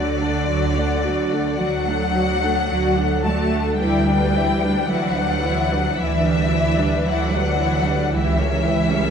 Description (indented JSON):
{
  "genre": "classical, slow romantic movement for string orchestra",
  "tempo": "55 BPM",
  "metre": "4/4",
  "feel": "rubato",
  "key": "D major",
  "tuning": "A4 = 442 Hz",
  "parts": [
    { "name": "rich symphonic violin section", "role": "melody", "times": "0.0-9.1 s", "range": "D5 to A5", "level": "-24 LUFS", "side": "left 6 dB", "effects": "none" },
    { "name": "rich symphonic violin section", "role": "second line", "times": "0.0-9.1 s", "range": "F#4 to F#5", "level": "-27 LUFS", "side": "left 4 dB", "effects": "none" },
    { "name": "bright symphonic viola section", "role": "accompaniment", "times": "0.0-9.1 s", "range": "E3 to F#4", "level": "-24 LUFS", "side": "right 2 dB", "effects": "none" },
    { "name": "bright studio cello section", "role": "bass", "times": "0.0-9.1 s", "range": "D3 to A3", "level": "-24 LUFS", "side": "right 3 dB", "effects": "none" },
    { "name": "clear symphonic double bass section", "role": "bass", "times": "0.0-9.1 s", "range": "C#2 to D2", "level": "-23 LUFS", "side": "right 2 dB", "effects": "none" }
  ],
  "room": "moderate concert hall reverb, RT60 2.2 s",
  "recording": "dark, warm production",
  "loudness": "-17 LUFS",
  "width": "side -7 dB against mid",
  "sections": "0.0-9.1 A section",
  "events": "none",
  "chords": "0.0 D; 3.8 Em7/D; 8.1 C#dim7"
}